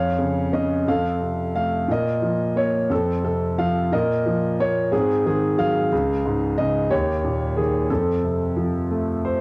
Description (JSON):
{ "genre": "classical, lyrical solo piano", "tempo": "60 BPM (dotted quarters)", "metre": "6/8", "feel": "rubato", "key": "unclear", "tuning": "A4 = 439 Hz", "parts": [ { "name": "clear concert grand piano", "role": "solo", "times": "0.0-9.4 s", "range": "Db2 to F5", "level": "-22 LUFS", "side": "equal", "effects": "cassette tape" } ], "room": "moderate studio reverb, RT60 0.6 s", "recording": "home recording on cassette", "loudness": "-22 LUFS", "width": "mono", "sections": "0.0-9.4 A section", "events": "grand piano fill 8.9-9.4", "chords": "0.0 Dbadd9/F; 0.9 F; 1.9 Bb5; 2.9 F5; 3.9 Bb5; 4.9 Ab7; 5.9 Db; 6.9 Eb; 7.9 F", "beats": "0.86 | 1.89 2.91 | 3.93 4.93 | 5.92 6.91 | 7.90 8.90" }